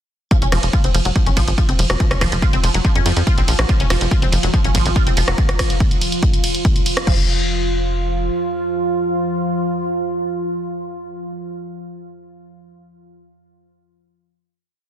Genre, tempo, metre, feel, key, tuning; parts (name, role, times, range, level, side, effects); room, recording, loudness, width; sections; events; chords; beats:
driving peak-time techno; 142 BPM; 4/4; straight; A4 = 440 Hz
resonant blip pluck; riff; 0.3-7.3 s; F3 to F4; -24 LUFS; right 1 dB; phaser, tube saturation, sidechain pumping, dub echo
deep dark ambient pad; drone; 1.9-11.3 s; F3 to F4; -23 LUFS; right 1 dB; chorus, built-in reverb, sidechain pumping
electronic kick drum; drums; 0.3-7.2 s; -17 LUFS; equal; overdrive
punchy analog drum machine; drums; 0.3-7.2 s; crash cymbal, hi-hat, ride cymbal, rim click; -22 LUFS; right 1 dB; sidechain pumping on hats, soft clipping on snare, sidechain pumping on cymbals
tight sequencer bass; bass; 0.4-8.3 s; F1 to F2; -20 LUFS; equal; sidechain pumping
digital ambience; dense, heavily limited modern master; -15 LUFS; side -10 dB against mid
0.3-7.1 drop; 7.1-10.5 final note
drop 0.3-7.1
| 0.31 0.73 1.16 1.58 | 2.00 2.42 2.85 3.27 | 3.69 4.11 4.54 4.96 | 5.38 5.80 6.23 6.65 | 7.07 7.49 7.92 8.34 | 8.76 9.18 9.61 10.03